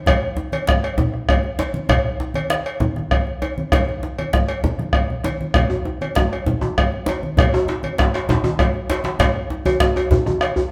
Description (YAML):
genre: west african traditional, West African drum ensemble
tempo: 131 BPM (dotted quarters)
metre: 12/8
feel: straight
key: none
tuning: none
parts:
  - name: bombo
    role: percussion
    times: 0.1-10.6 s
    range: none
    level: -22 LUFS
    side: equal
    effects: none
  - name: congas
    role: percussion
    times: 0.1-10.7 s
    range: none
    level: -28 LUFS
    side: equal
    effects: none
  - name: cowbell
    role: percussion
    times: 0.1-10.6 s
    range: none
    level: -28 LUFS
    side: equal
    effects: none
  - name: djembe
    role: percussion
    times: 0.1-10.3 s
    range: none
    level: -28 LUFS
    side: equal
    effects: none
  - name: djembe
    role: percussion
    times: 5.7-10.7 s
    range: none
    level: -24 LUFS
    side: equal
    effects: none
room: wet large studio reverb, RT60 1.3 s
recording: band playing live in one room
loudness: -20 LUFS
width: mono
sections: 0.0-10.7 A section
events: drum fill 5.1-5.6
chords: none